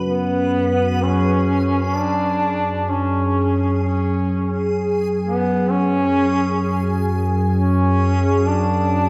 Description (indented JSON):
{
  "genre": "ambient",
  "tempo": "64 BPM",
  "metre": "4/4",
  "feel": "straight",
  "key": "unclear",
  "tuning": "A4 = 439 Hz",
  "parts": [
    { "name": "analog drone", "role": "drone", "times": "0.0-9.1 s", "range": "F#2 to C#3", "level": "-22 LUFS", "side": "equal", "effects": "chorus" },
    { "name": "backwards swelling texture", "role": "texture", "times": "0.0-9.1 s", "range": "G#4", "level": "-28 LUFS", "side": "equal", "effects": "built-in reverb" },
    { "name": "mellow duduk", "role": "melody", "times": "0.1-9.1 s", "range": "B3 to D4", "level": "-23 LUFS", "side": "equal", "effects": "analog delay" }
  ],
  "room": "wet spring reverb, RT60 2.6 s",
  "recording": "echo-heavy mix",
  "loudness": "-19 LUFS",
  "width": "mono",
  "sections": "0.1-9.1 A section",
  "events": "none",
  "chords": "0.1 F#sus2"
}